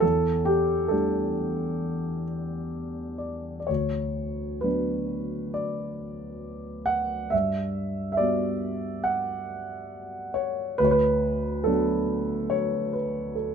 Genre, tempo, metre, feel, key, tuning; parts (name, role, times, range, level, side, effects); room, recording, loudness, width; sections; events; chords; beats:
classical, lyrical solo piano; 67 BPM; 4/4; uneven beats, rubato; D major; A4 = 440 Hz
dark concert grand piano; solo; 0.0-13.5 s; D2 to F#5; -25 LUFS; equal
light reverb; close, detailed microphones; -24 LUFS; side -7 dB against mid
0.0-13.5 A section
0.0 A7sus4/E; 3.7 D6; 7.3 Gmaj7; 10.8 D6
| 0.02 0.91 1.81 2.74 | 3.69 4.63 5.55 6.45 | 7.32 8.19 9.06 9.93 | 10.80 11.66 12.53 13.39